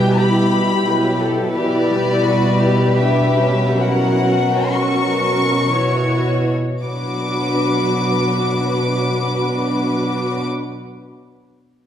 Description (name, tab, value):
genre	classical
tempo	51-88 BPM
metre	3/4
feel	rubato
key	B minor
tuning	A4 = 440 Hz
part	warm studio violin section	melody	0.0-10.4 s	D5 to D6	-22 LUFS	left 4 dB	none
part	warm chamber violin section	second line	0.0-10.4 s	E4 to C#5	-22 LUFS	left 2 dB	none
part	dark symphonic viola section	accompaniment	0.0-10.4 s	E3 to E4	-20 LUFS	right 1 dB	none
part	warm symphonic cello section	bass	0.0-10.4 s	B2	-20 LUFS	right 1 dB	none
room	wet recital hall reverb, RT60 1.7 s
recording	heard from further back in the room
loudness	-15 LUFS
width	side -9 dB against mid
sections	0.0-6.8 A section; 6.8-11.9 B section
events	slowing down 0.5-6.8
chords	0.0 Em/B; 3.8 F#7/B; 6.8 Bm